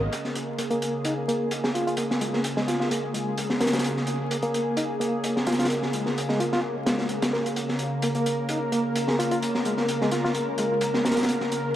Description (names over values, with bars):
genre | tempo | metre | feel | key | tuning
breakbeat, breaks | 129 BPM | 4/4 | swing 54% on 16ths | Bb minor | A4 = 441 Hz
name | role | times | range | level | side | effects
lush unison pad | sustained chords | 0.0-11.8 s | Db3 to Eb5 | -28 LUFS | equal | chorus
crunchy breakbeat drum kit | drums | 0.1-11.6 s | hi-hat, snare drum | -28 LUFS | equal | high-pass filter on kick, high-pass filter on hats, high-pass filter on snare, high-pass filter on room, dub echo
overdriven reed electric piano | riff | 0.6-11.2 s | Ab3 to Bb4 | -28 LUFS | equal | fast tremolo, low-pass filter, dub echo
room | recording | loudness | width
moderate plate reverb, RT60 2.0 s | echo-heavy mix, vinyl crackle | -23 LUFS | side -12 dB against mid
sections
0.1-11.8 A section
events
none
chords
0.1 Bbm7